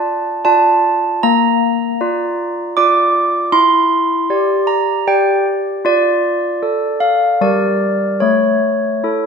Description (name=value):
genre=classical, tune for handbells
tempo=77 BPM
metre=3/4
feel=straight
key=D minor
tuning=A4 = 441 Hz
part: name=handbells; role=solo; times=0.0-9.3 s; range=G3 to D6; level=-12 LUFS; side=equal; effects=none
room=wet scoring stage reverb, RT60 1.4 s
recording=minimal, uncompressed stereo recording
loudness=-12 LUFS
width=side -6 dB against mid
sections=0.0-9.3 A section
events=none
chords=0.0 Dm/F; 1.2 Bb; 3.5 Em7b5; 5.9 Dm/F; 7.4 Gm; 8.2 A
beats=0.46 | 1.23 2.00 2.77 | 3.53 4.30 5.08 | 5.86 6.64 7.42 | 8.22 9.03